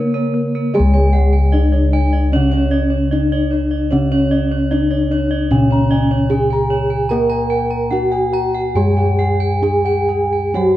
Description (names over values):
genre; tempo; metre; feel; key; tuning
Javanese gamelan; 63-76 BPM; 4/4; straight; C# pelog barang; A4 = 440 Hz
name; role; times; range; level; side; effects
gamelan-type bronze metallophone; melody; 0.0-10.8 s; A#3+20c to A#4+20c; -18 LUFS; equal; none
gamelan-type bronze metallophone; accompaniment; 0.0-10.8 s; C#3 to A#3+20c; -23 LUFS; equal; none
gamelan-type bossed gongs; arpeggios; 0.0-10.8 s; A#4+20c to A#5+20c; -26 LUFS; left 2 dB; none
gamelan-type bronze metallophone; arpeggios; 0.0-10.8 s; A#4+20c to A#5+20c; -25 LUFS; right 5 dB; none
gamelan-type bossed gongs; bass; 0.0-10.8 s; C#2 to A#4+20c; -17 LUFS; left 1 dB; none
room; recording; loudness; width
moderate recital hall reverb, RT60 1.9 s; dark, warm production; -14 LUFS; side -14 dB against mid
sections
0.7-10.8 A section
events
none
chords
none